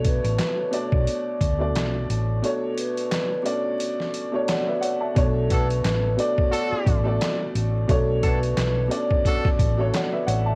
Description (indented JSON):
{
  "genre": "hip hop, boom-bap hip-hop",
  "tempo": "88 BPM",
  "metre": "4/4",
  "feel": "swing 57% on 16ths",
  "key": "B minor",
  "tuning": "A4 = 441 Hz",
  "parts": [
    { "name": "vibraphone with soft mallets", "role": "melody", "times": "0.0-10.6 s", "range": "A4 to D5", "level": "-31 LUFS", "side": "equal", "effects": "high-pass filter, low-pass filter, cassette tape, tape echo" },
    { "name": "warm upright piano", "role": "accompaniment", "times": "0.0-10.6 s", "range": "B2 to A5", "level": "-29 LUFS", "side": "equal", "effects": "high-pass filter, low-pass filter, cassette tape" },
    { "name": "hollow-body short-scale fingered electric bass", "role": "bass", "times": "0.0-10.6 s", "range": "A1 to D2", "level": "-26 LUFS", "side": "equal", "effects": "tube saturation" },
    { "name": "trip hop sampler-style drum kit", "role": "drums", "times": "0.0-10.5 s", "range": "handclaps, hi-hat, kick drum, snare drum", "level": "-27 LUFS", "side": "equal", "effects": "cassette tape" },
    { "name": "clear horn section", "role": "stabs", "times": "5.5-9.5 s", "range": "D4 to A4", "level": "-33 LUFS", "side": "equal", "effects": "high-pass filter, low-pass filter, cassette tape, tape echo" }
  ],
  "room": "small room ambience",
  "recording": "home recording on cassette, vinyl crackle",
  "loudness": "-23 LUFS",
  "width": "mono",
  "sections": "0.0-5.2 A section; 5.2-10.6 B section",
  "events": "kick muted 2.4-5.2",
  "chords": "0.0 Bm9"
}